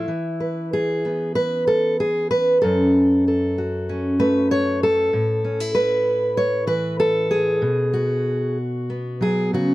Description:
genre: folk, solo fingerstyle acoustic guitar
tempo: 96 BPM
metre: 4/4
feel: rubato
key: unclear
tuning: A4 = 440 Hz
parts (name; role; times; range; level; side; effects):
- fingerpicked steel-string acoustic guitar; solo; 0.0-9.7 s; F#2 to C#5; -18 LUFS; equal; none
room: little or no reverb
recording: dry, close 1970s-style studio recording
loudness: -18 LUFS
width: side -17 dB against mid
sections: 0.1-9.7 A section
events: none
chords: 0.1 E; 2.6 F#m; 5.1 Aadd9; 7.6 B5

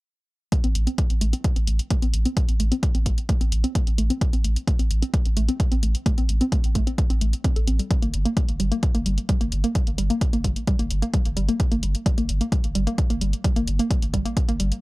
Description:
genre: driving peak-time techno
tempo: 130 BPM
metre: 4/4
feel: straight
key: A phrygian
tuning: A4 = 440 Hz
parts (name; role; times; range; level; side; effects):
- warbly dusty pluck; riff; 0.5-14.7 s; G3 to A4; -27 LUFS; equal; chorus, sidechain pumping, tape echo
- electronic hi-hat; drums; 0.5-14.8 s; none; -32 LUFS; left 1 dB; none
- electronic kick drum; drums; 0.5-14.5 s; none; -22 LUFS; equal; none
- saturated sub bass; bass; 0.6-14.7 s; G1 to A1; -24 LUFS; equal; overdrive, sidechain pumping, low-pass filter
room: digital ambience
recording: dry, gritty hardware recording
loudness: -20 LUFS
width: side -21 dB against mid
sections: 0.5-14.8 A section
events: filter sweep on synth arpeggio sound 0.5-14.8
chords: none

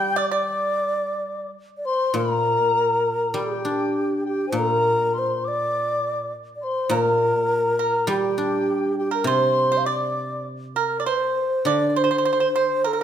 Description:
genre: chinese traditional, Chinese chamber ensemble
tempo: 101 BPM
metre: 4/4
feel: straight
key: unclear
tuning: A4 = 440 Hz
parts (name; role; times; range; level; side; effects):
- low xiao; melody; 0.0-13.0 s; G4 to G5; -23 LUFS; equal; none
- mellow dizi; second line; 0.0-10.5 s; G5 to G6; -26 LUFS; left 3 dB; none
- pipa; second line; 0.0-1.5, 6.9-13.0 s; G4 to G5; -25 LUFS; right 8 dB; none
- guzheng; accompaniment; 0.0-13.0 s; Bb2 to D4; -27 LUFS; left 1 dB; none
room: moderate recital hall reverb, RT60 1.6 s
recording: minimal, uncompressed stereo recording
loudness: -20 LUFS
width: side -9 dB against mid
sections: 0.0-2.1 A section; 2.1-11.7 B section; 11.7-13.0 C section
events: none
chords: none

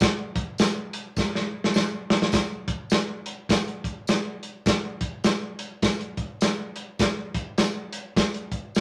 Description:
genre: soul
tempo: 103 BPM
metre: 4/4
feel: swing 60% on 8ths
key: none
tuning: none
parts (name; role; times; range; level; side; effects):
- crunchy breakbeat drum kit; drums; 0.0-8.8 s; hi-hat, kick drum, snare drum; -26 LUFS; equal; none
- tambourine; percussion; 0.0-8.8 s; none; -41 LUFS; equal; none
room: light reverb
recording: none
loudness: -26 LUFS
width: mono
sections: 0.0-2.3 A section; 2.3-8.8 B section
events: drum fill 1.2-2.3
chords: none

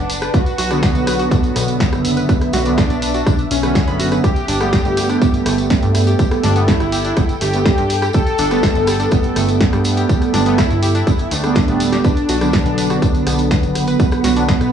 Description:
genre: melodic techno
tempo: 123 BPM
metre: 4/4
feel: straight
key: B minor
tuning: A4 = 440 Hz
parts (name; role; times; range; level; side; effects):
- wide unison lead; melody; 0.0-14.7 s; B3 to A4; -23 LUFS; equal; lush chorus, sidechain pumping, tape echo
- plucky analog bass; bass; 0.0-14.7 s; D1 to G2; -20 LUFS; equal; sidechain pumping
- ethereal airy pad; texture; 0.0-14.7 s; B3 to B5; -25 LUFS; left 1 dB; ensemble chorus, built-in reverb, phaser, sidechain pumping
- punchy analog drum machine; drums; 0.1-14.7 s; hi-hat, rim click, snare drum; -23 LUFS; right 1 dB; none
- tambourine; percussion; 0.1-14.7 s; none; -30 LUFS; right 2 dB; none
- analog pluck; arpeggios; 0.2-14.6 s; A3 to B5; -25 LUFS; right 1 dB; chorus, sidechain pumping, tape echo
- electronic kick drum; drums; 0.3-14.6 s; none; -16 LUFS; equal; none
- analog synth brass; stabs; 0.7-14.5 s; D3 to B3; -20 LUFS; right 2 dB; chorus, sidechain pumping, tape echo
room: little or no reverb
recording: dry, gritty hardware recording, cassette tape, studio ambience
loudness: -13 LUFS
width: side -8 dB against mid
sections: 0.0-14.7 A section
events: drum fill 11.6-12.0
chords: 0.0 Bm; 4.2 Gadd9; 12.0 Bm

